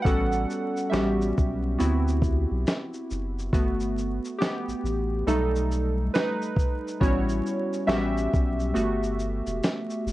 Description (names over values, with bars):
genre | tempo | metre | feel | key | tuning
lo-fi hip hop | 69 BPM | 4/4 | swing 62% on 16ths | G major | A4 = 441 Hz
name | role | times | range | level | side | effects
warm analog keys | accompaniment | 0.0-10.1 s | G3 to F#5 | -26 LUFS | right 1 dB | chorus, low-pass filter
soft dub sub bass | bass | 0.1-10.1 s | E1 to D2 | -28 LUFS | equal | none
dusty soul sampler-style drum kit | drums | 0.1-10.1 s | hi-hat, kick drum, shaker, snare drum | -26 LUFS | equal | none
room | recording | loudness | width
moderate small room reverb, RT60 0.5 s | vinyl crackle, nothing above 10.3 kHz | -24 LUFS | side -16 dB against mid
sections
0.0-10.1 A section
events
synth keys solo 0.0-10.1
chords
0.1 A13; 1.8 D13; 3.5 Gmaj9; 5.3 B7b13; 7.0 A13; 8.7 Gmaj9